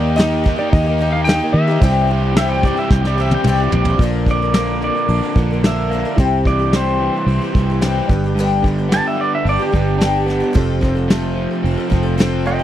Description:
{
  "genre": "folk rock and heartland rock",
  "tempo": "110 BPM",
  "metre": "4/4",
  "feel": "straight",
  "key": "C mixolydian",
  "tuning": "A4 = 443 Hz",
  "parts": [
    { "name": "clean lap steel guitar", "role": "melody", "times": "0.0-3.4 s", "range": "D5 to G5", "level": "-22 LUFS", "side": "equal", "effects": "none" },
    { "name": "picked twelve-string acoustic guitar", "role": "accompaniment", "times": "0.0-12.6 s", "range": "G2 to Bb4", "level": "-23 LUFS", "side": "left 6 dB", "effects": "none" },
    { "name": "warm concert grand piano", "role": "accompaniment", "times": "0.0-12.6 s", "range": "D4 to G5", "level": "-31 LUFS", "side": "right 3 dB", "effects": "none" },
    { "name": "crunchy overdriven guitar", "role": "riff", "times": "0.0-12.6 s", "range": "F2 to G4", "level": "-21 LUFS", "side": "equal", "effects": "none" },
    { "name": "fingered electric bass", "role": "bass", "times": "0.0-12.6 s", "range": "F1 to Eb3", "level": "-18 LUFS", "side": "equal", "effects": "none" },
    { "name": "soft brush drum kit", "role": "drums", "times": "0.2-12.3 s", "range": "hi-hat, kick drum, snare drum, toms", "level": "-16 LUFS", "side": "equal", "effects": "none" },
    { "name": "pedal steel guitar", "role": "second line", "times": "2.4-12.6 s", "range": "G4 to A5", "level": "-22 LUFS", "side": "right 4 dB", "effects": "none" }
  ],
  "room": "little or no reverb",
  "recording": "dry, close 1970s-style studio recording",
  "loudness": "-14 LUFS",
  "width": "side -12 dB against mid",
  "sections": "0.0-4.0 A section; 4.0-12.6 B section",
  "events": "drum fill 2.9-4.0; pedal steel guitar solo 4.0-12.6",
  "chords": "0.0 Eb; 1.8 C; 4.0 Bb; 6.2 C; 8.1 G; 10.6 F"
}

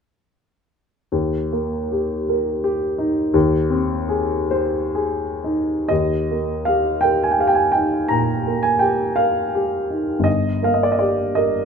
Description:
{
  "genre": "classical, romantic nocturne for solo piano",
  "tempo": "39-57 BPM (dotted quarters)",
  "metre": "12/8",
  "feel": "rubato",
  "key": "Eb major",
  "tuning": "A4 = 440 Hz",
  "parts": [
    { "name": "warm baby grand piano", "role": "solo", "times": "1.1-11.7 s", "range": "G1 to Bb5", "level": "-17 LUFS", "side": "equal", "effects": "none" }
  ],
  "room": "moderate large studio reverb, RT60 1.2 s",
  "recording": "none",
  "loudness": "-17 LUFS",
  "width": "side -6 dB against mid",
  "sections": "1.1-5.9 A section; 5.9-11.7 B section",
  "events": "none",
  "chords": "1.1 Eb; 3.3 Ab/Eb; 5.9 Eb; 10.3 Eb/G"
}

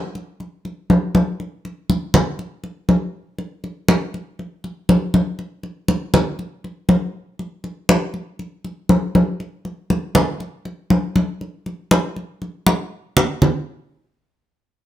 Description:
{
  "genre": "latin",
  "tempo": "120 BPM",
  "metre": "4/4",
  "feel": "straight",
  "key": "none",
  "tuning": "none",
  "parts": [
    { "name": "congas", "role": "percussion", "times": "0.2-13.5 s", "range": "none", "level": "-17 LUFS", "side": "equal", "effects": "none" }
  ],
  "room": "moderate studio reverb, RT60 0.8 s",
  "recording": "close, detailed microphones",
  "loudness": "-17 LUFS",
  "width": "side -12 dB against mid",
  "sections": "0.0-13.4 A section; 13.4-14.8 B section",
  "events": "drum fill 12.7-13.4",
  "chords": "none"
}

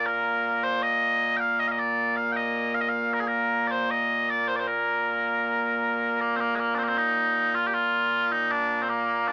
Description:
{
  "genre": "scottish traditional, Scottish pipe music",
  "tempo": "78 BPM",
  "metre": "2/4",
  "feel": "straight",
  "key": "Bb major",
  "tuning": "A4 = 441 Hz",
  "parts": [
    { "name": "mellow small bagpipes", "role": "solo", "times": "0.0-9.3 s", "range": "Bb2 to G5", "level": "-22 LUFS", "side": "equal", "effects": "none" }
  ],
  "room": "light reverb",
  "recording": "small speaker sound",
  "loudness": "-22 LUFS",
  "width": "side -28 dB against mid",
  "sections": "0.0-6.2 A section; 6.2-9.3 A section",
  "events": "none",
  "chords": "none"
}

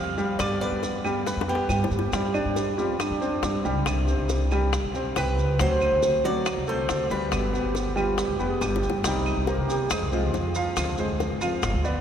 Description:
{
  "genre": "latin, Cuban son and guajira",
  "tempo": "139 BPM",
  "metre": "4/4",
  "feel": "straight",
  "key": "unclear",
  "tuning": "A4 = 445 Hz",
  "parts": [
    { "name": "Cuban tres", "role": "melody", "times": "0.0-1.9, 5.2-8.6 s", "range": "G4 to F5", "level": "-29 LUFS", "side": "right 1 dB", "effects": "none" },
    { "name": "nylon-string guitar", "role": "accompaniment", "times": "0.0-12.0 s", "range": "B2 to G4", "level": "-32 LUFS", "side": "left 2 dB", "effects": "none" },
    { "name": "warm baby grand piano", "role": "arpeggios", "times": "0.0-12.0 s", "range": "F3 to G5", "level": "-29 LUFS", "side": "right 1 dB", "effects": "none" },
    { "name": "upright bass", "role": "bass", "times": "0.0-12.0 s", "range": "F1 to C3", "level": "-28 LUFS", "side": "equal", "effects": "none" },
    { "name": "maracas", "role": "percussion", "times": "0.2-12.0 s", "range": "none", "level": "-39 LUFS", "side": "right 3 dB", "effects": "none" },
    { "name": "bongos", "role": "percussion", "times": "0.4-12.0 s", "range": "none", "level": "-33 LUFS", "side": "left 4 dB", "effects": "none" },
    { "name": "claves", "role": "percussion", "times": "0.4-11.6 s", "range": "none", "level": "-40 LUFS", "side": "right 2 dB", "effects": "none" },
    { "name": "alto flute", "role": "second line", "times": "1.9-3.9, 7.5-10.9 s", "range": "D4 to Ab4", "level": "-32 LUFS", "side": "right 4 dB", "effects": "none" }
  ],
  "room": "wet cathedral reverb, RT60 5.4 s",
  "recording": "recorded in a church or concert hall",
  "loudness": "-23 LUFS",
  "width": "side -8 dB against mid",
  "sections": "0.0-9.1 A section; 9.1-12.0 B section",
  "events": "drum fill 1.3-2.1, 8.6-9.1",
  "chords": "0.4 G; 2.1 Gsus4; 3.9 Cm; 5.6 D7; 7.3 G; 9.1 Cm7; 9.9 Fm; 10.8 Dm7b5"
}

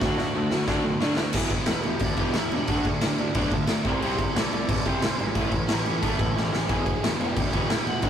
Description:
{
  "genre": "punk rock",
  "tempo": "180 BPM",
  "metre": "4/4",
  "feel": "straight",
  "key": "unclear",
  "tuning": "A4 = 440 Hz",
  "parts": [
    { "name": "biting overdriven guitar", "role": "melody", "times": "0.0-8.1 s", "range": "D4 to B5", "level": "-32 LUFS", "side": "left 1 dB", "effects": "none" },
    { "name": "cranked stack guitar", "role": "riff", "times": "0.0-8.1 s", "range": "E2 to D4", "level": "-33 LUFS", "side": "left 4 dB", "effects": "overdrive" },
    { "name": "heavy high-gain guitar", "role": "riff", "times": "0.0-8.1 s", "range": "A2 to F#4", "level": "-34 LUFS", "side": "equal", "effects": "distortion" },
    { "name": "overdriven semi-hollow guitar", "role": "riff", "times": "0.0-8.1 s", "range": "E2 to D4", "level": "-30 LUFS", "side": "right 3 dB", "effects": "none" },
    { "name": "fuzz picked electric bass", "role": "bass", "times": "0.0-8.1 s", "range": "E1 to D2", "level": "-32 LUFS", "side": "equal", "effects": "overdrive" },
    { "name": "raw garage drum kit", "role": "drums", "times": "0.0-8.1 s", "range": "crash cymbal, kick drum, snare drum", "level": "-25 LUFS", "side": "equal", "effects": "none" }
  ],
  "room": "moderate booth ambience, RT60 0.2 s",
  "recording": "rough rehearsal-room recording, warm saturation",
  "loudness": "-22 LUFS",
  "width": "side -9 dB against mid",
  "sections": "0.0-1.4 A section; 1.4-8.1 B section",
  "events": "drum fill 0.0-1.4, 6.4-6.7; overdriven electric guitar solo 1.4-8.1",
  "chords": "0.0 D; 1.4 E; 2.7 D; 3.9 C; 5.4 A; 6.7 E"
}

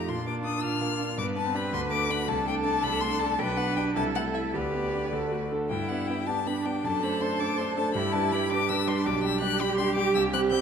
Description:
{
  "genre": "quick classical-period movement for piano quartet",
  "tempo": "108 BPM (dotted quarters)",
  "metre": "6/8",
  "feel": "straight",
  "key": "G major",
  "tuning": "A4 = 441 Hz",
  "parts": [
    { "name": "warm violin", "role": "melody", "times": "0.0-10.6 s", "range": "D5 to G6", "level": "-31 LUFS", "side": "left 9 dB", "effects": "none" },
    { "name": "rich cello", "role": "second line", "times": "0.0-10.6 s", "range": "D4 to B4", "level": "-31 LUFS", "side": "right 5 dB", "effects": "none" },
    { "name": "clear concert grand piano", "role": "accompaniment", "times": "0.0-10.6 s", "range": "B1 to C5", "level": "-30 LUFS", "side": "equal", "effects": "none" },
    { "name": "warm viola", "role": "accompaniment", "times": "0.0-10.6 s", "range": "B3 to A4", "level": "-32 LUFS", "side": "right 3 dB", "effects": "none" }
  ],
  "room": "wet recital hall reverb, RT60 1.4 s",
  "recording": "dark, warm production",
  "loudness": "-25 LUFS",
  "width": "side -7 dB against mid",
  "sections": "0.0-5.7 A section; 5.7-10.6 B section",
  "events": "none",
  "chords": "0.1 Bb; 1.2 G; 1.7 D; 2.3 D5/C; 3.4 G/B; 4.0 Am/C; 4.5 G/D; 5.1 D; 5.7 G; 6.8 D7/F#; 7.9 G; 9.1 G/B"
}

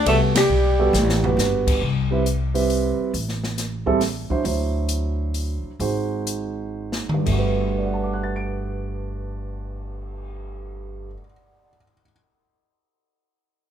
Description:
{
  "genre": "jazz, small-group swing and bop",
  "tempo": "116-137 BPM",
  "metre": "3/4",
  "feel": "swing 67% on 8ths",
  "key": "G major",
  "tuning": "A4 = 441 Hz",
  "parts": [
    { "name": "vintage hollow-body jazz guitar", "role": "melody", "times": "0.0-1.3 s", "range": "G4 to A4", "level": "-21 LUFS", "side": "left 1 dB", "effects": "none" },
    { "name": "clear tenor saxophone", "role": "second line", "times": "0.0-1.3 s", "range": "G3 to A3", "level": "-25 LUFS", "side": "right 2 dB", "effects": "none" },
    { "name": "upright bass", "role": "bass", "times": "0.0-11.2 s", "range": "G1 to D2", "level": "-25 LUFS", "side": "left 1 dB", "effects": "none" },
    { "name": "dark baby grand piano", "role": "accompaniment", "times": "0.1-12.1 s", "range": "G2 to D7", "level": "-25 LUFS", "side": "right 5 dB", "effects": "none" },
    { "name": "open jazz drum kit", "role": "drums", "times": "0.1-10.3 s", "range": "crash cymbal, cymbal swell, hi-hat, kick drum, ride cymbal, snare drum, toms", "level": "-26 LUFS", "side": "equal", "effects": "none" }
  ],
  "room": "light reverb",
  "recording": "minimal, uncompressed stereo recording",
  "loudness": "-20 LUFS",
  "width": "side -9 dB against mid",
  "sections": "0.0-1.8 A section; 1.8-7.3 B section; 7.3-10.4 C section",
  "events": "band accent 0.3; drum fill 0.9-1.4, 6.7-7.3; slowing down 4.4-7.3",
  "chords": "0.0 Gmaj9; 1.8 Cmaj7; 3.1 Am; 4.4 D9; 5.8 Ab7; 7.3 Gmaj9"
}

